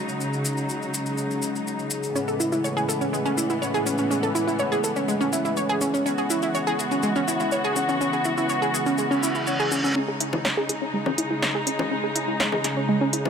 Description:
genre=melodic techno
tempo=123 BPM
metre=4/4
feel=straight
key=C# minor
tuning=A4 = 442 Hz
part: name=muted studio string section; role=sustained chords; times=0.0-13.3 s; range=A2 to F#4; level=-28 LUFS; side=left 1 dB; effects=none
part: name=analog drone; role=drone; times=0.0-13.3 s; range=C#3 to G#3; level=-31 LUFS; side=left 1 dB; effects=chorus
part: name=maracas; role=percussion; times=0.1-9.9 s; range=none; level=-33 LUFS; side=left 4 dB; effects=none
part: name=wide unison pluck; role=arpeggios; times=2.2-13.3 s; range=G#3 to C#5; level=-24 LUFS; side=right 1 dB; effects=digital delay
part: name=reverse cymbal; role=sound effects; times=9.1-10.0 s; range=none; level=-32 LUFS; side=right 2 dB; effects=none
part: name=techno drum kit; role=drums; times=10.2-13.3 s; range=congas, hi-hat, snare drum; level=-27 LUFS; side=left 1 dB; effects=high-pass filter on cymbals, high-pass filter on hats, high-pass filter on perc, high-pass filter on snare
room=light reverb, digital ambience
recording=none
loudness=-22 LUFS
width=side -7 dB against mid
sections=0.0-10.0 A section; 10.0-13.3 B section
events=reverse cymbal 9.1-10.0; build-up 10.0-13.3; filter sweep on synth arpeggio sound 10.0-13.3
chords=0.0 C#5; 2.2 A; 6.1 E; 10.0 C#m

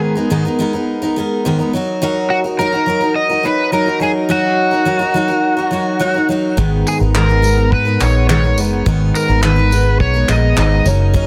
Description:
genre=acoustic pop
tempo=105 BPM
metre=4/4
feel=straight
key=G# minor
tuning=A4 = 440 Hz
part: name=picked steel-string acoustic guitar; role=accompaniment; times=0.0-11.3 s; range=G#2 to A#4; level=-20 LUFS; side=equal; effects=none
part: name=warm French horn section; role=sustained chords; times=0.0-11.3 s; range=F#3 to A#4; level=-27 LUFS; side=equal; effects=none
part: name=overdriven slide guitar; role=melody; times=2.3-10.8 s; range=F#4 to D#5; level=-20 LUFS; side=equal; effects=plate reverb, delay
part: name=vintage muted fingered electric bass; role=bass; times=6.6-11.3 s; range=F#1 to G#2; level=-17 LUFS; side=equal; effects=none
part: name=cloth-damped thuddy drum kit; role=drums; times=6.6-11.3 s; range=handclaps, kick drum, tambourine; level=-22 LUFS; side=equal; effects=none
room=light reverb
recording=dense, heavily limited modern master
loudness=-15 LUFS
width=mono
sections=0.0-11.3 A section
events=none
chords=0.0 G#madd9; 1.7 D#m/F#; 6.6 G#madd9

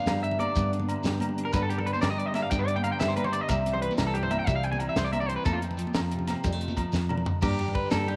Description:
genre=highlife guitar band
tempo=122 BPM (dotted quarters)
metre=12/8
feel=straight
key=G mixolydian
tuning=A4 = 441 Hz
part: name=fingerpicked steel-string acoustic guitar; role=accompaniment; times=0.0-8.2 s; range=E2 to G4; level=-36 LUFS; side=equal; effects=none
part: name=electric guitar at the edge of break-up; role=arpeggios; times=0.0-8.2 s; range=F4 to Ab5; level=-32 LUFS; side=equal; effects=tape echo
part: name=fingered electric bass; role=bass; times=0.1-8.2 s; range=C2 to G2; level=-33 LUFS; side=equal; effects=none
part: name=tight funk drum kit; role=drums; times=0.1-8.2 s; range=crash cymbal, hi-hat, kick drum, ride cymbal, snare drum, toms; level=-34 LUFS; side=equal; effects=none
part: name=agogo bells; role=percussion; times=0.1-8.1 s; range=none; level=-40 LUFS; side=equal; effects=none
part: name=congas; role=percussion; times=0.1-8.0 s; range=none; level=-39 LUFS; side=equal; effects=none
part: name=shekere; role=percussion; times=0.1-8.0 s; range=none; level=-41 LUFS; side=equal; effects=none
room=moderate echo chamber reverb, RT60 1.6 s, studio reverb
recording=none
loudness=-28 LUFS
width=mono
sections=0.0-7.4 A section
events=clean electric guitar solo 0.0-7.4; drum fill 6.9-7.4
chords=0.0 G; 3.5 C; 5.5 F; 7.4 G

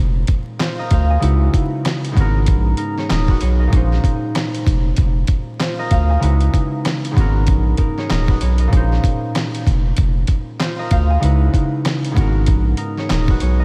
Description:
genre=hip hop, boom-bap hip-hop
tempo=96 BPM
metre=4/4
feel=swing 59% on 16ths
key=Bb phrygian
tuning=A4 = 438 Hz
part: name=concert harp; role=accompaniment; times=0.0-13.6 s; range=Ab2 to Ab5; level=-23 LUFS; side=equal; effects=high-pass filter, low-pass filter
part: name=saturated sub bass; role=bass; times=0.0-13.6 s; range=Eb1 to D2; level=-18 LUFS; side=equal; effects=none
part: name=dusty soul sampler-style drum kit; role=drums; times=0.3-13.6 s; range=handclaps, hi-hat, kick drum, snare drum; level=-20 LUFS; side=equal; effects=none
room=light reverb, digital ambience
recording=vinyl crackle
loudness=-17 LUFS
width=mono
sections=0.0-13.6 A section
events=none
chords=0.0 Bbm11; 1.2 Dbm11; 2.2 Abm11; 3.7 Bbm11; 6.2 Dbm11; 7.2 Abm11; 8.7 Bbm11; 11.2 Dbm11; 12.2 Abm11

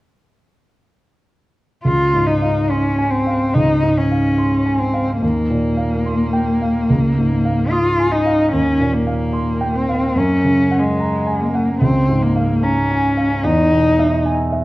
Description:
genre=classical, impressionist duo for cello and grand piano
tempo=73 BPM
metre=4/4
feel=rubato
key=Db major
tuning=A4 = 440 Hz
part: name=rich cello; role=melody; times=1.8-14.2 s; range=Ab3 to F4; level=-17 LUFS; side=left 1 dB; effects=none
part: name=warm concert grand piano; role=accompaniment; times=1.8-14.6 s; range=Db2 to Eb6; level=-18 LUFS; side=right 1 dB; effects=none
room=wet recital hall reverb, RT60 1.6 s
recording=worn, warbling old tape, cassette tape, warbly pitch drift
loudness=-14 LUFS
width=side -18 dB against mid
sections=1.9-14.6 A section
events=none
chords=1.9 Dbmaj7; 5.2 Eb69; 6.9 Dbadd9; 8.5 Eb69; 10.2 Gbadd9; 11.8 Db6; 13.4 Emaj7

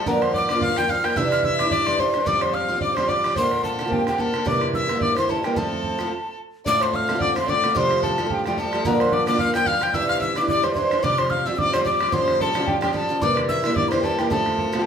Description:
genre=celtic folk, Celtic reel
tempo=219 BPM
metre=4/4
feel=swing 55% on 8ths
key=unclear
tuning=A4 = 445 Hz
part: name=mellow hollow mid whistle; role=melody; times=0.0-14.9 s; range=G5 to G6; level=-24 LUFS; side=left 1 dB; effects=none
part: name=dark fiddle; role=second line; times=0.0-14.9 s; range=G4 to G5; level=-25 LUFS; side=left 2 dB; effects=none
part: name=picked acoustic archtop guitar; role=accompaniment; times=0.0-14.9 s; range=D2 to F4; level=-24 LUFS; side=right 1 dB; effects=none
part: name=bodhran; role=percussion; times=0.1-14.8 s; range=none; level=-29 LUFS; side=right 4 dB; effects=none
room=wet large studio reverb, RT60 0.8 s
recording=band playing live in one room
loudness=-19 LUFS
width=side -7 dB against mid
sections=0.0-6.7 A section; 6.7-14.9 A section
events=stop 6.1-6.7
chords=0.1 Gm7; 1.2 Cadd9; 2.3 Csus4; 3.4 Bbadd9; 4.5 C7; 5.6 F; 6.7 Dm7; 7.8 Fadd9; 8.8 Gm7; 9.9 Cadd9; 11.0 Csus4; 12.1 Bbm6; 13.2 C7; 14.3 F

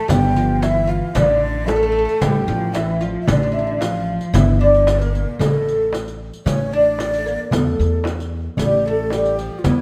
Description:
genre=Arabic maqam ensemble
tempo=113 BPM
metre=4/4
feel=straight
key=A maqam hijaz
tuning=A4 = 441 Hz
part: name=oud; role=melody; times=0.0-9.8 s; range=E3 to A4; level=-23 LUFS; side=equal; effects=none
part: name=breathy ney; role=second line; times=0.0-9.8 s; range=E4 to A5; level=-27 LUFS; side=equal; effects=none
part: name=rich cello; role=second line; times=0.0-5.9 s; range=A2 to A3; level=-29 LUFS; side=equal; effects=none
part: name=upright bass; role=bass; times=0.1-9.8 s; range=G1 to E2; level=-23 LUFS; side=equal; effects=none
part: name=darbuka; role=percussion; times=0.1-9.8 s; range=none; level=-28 LUFS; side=equal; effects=none
part: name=frame drum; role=percussion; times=0.1-9.8 s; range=none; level=-28 LUFS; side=equal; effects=none
part: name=riq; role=percussion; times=0.1-9.8 s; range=none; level=-34 LUFS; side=equal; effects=none
room=moderate stone room reverb, RT60 1.5 s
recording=band playing live in one room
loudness=-18 LUFS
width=mono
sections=0.0-6.5 A section; 6.5-9.8 B section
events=none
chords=none

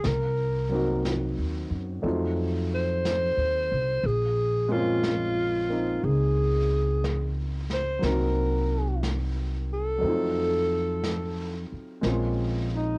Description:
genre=jazz ballad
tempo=60 BPM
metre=4/4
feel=swing 68% on 8ths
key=Bb minor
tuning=A4 = 439 Hz
part: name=breathy alto saxophone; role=melody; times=0.0-13.0 s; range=Eb4 to C5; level=-30 LUFS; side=equal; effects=cassette tape
part: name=warm upright piano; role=accompaniment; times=0.0-13.0 s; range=Gb3 to Gb4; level=-33 LUFS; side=equal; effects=cassette tape
part: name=upright bass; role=bass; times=0.0-13.0 s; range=Bb1 to Gb2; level=-30 LUFS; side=equal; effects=none
part: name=jazz brush drum kit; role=drums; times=0.0-13.0 s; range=brushed snare drum, hi-hat, snare drum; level=-40 LUFS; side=equal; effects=cassette tape
room=light reverb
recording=home recording on cassette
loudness=-27 LUFS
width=mono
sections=0.0-12.0 A section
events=none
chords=0.0 Cm7b5; 2.0 F7b9; 4.0 Bbm9; 8.0 Cm7b5; 10.0 F7b9; 12.0 Bbm9

